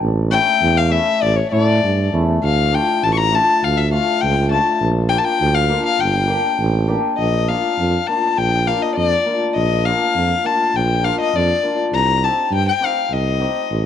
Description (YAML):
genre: klezmer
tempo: 101 BPM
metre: 2/4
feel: straight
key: G dorian sharp4, Bb major from 7.2 s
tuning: A4 = 440 Hz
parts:
  - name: mellow tuba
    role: bass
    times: 0.0-13.9 s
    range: G1 to A2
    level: -18 LUFS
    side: right 3 dB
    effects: none
  - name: dark violin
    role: melody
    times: 0.3-13.9 s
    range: C#5 to C#6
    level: -18 LUFS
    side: left 6 dB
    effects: none
  - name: cimbalom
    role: accompaniment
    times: 0.3-13.6 s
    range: A3 to G4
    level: -23 LUFS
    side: left 2 dB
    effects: none
room: light reverb, studio reverb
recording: none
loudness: -15 LUFS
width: side -9 dB against mid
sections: 0.0-7.2 A section; 7.2-13.9 B section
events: none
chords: 0.0 A; 2.4 Dm; 4.8 Bb; 6.0 Gm; 7.2 Bb; 11.9 Cm